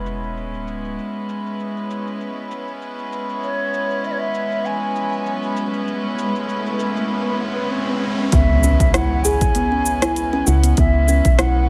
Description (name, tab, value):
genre	organic downtempo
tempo	98 BPM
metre	4/4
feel	swing 55% on 16ths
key	C# minor pentatonic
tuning	A4 = 440 Hz
part	rich chamber string section	sustained chords	0.0-11.7 s	G#3 to B4	-27 LUFS	equal	sidechain pumping, low-pass filter
part	sub drop, riser and impact	sound effects	0.0-10.8 s	none	-30 LUFS	equal	none
part	deep house drum kit	drums	0.1-11.5 s	hi-hat, rim click, shaker	-26 LUFS	equal	overdrive, low-pass filter on hats, low-pass filter on perc, low-pass filter on snare
part	mellow hollow bansuri	melody	3.4-11.7 s	C#5 to G#5	-25 LUFS	equal	delay
part	kalimba	arpeggios	8.3-11.5 s	B3 to G#4	-25 LUFS	equal	delay
part	woody FM bass	bass	8.3-11.7 s	B1 to C#2	-20 LUFS	equal	sidechain pumping
part	electronic kick drum	drums	8.3-11.4 s	none	-19 LUFS	equal	overdrive
room	light reverb, digital ambience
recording	none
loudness	-20 LUFS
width	mono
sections	0.0-8.3 A section; 8.3-11.7 B section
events	impact 0.0-1.0, 8.3-10.8; riser 5.4-8.3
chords	0.0 C#m7